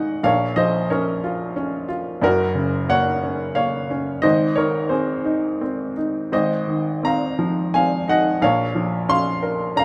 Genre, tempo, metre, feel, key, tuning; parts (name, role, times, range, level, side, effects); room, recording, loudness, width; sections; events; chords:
classical, lyrical solo piano; 88 BPM; 3/4; uneven beats, rubato; A4 = 441 Hz
clear upright piano; solo; 0.0-9.8 s; Gb1 to C6; -21 LUFS; equal
moderate studio reverb, RT60 0.6 s; -21 LUFS; mono
0.0-9.8 A section
0.2 Bbm; 2.2 Gb; 4.2 Abadd9; 6.3 Ab6; 8.4 Bbm